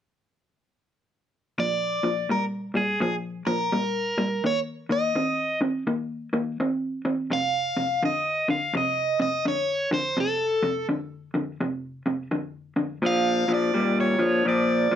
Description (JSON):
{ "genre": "blues", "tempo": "84 BPM", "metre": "4/4", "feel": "swing 63% on 8ths", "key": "unclear", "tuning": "A4 = 442 Hz", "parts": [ { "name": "overdriven electric guitar", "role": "melody", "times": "1.6-15.0 s", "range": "Ab4 to F5", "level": "-25 LUFS", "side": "right 1 dB", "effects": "phaser, plate reverb" }, { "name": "electric guitar through a small old amp", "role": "riff", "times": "1.6-15.0 s", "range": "F2 to C4", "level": "-26 LUFS", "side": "left 1 dB", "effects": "none" } ], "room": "moderate studio ambience, RT60 0.5 s", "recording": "none", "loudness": "-23 LUFS", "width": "side -10 dB against mid", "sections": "1.6-13.0 A section; 13.0-15.0 B section", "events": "none", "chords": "1.6 Bb; 4.4 Eb5; 7.3 F5; 13.0 Bb" }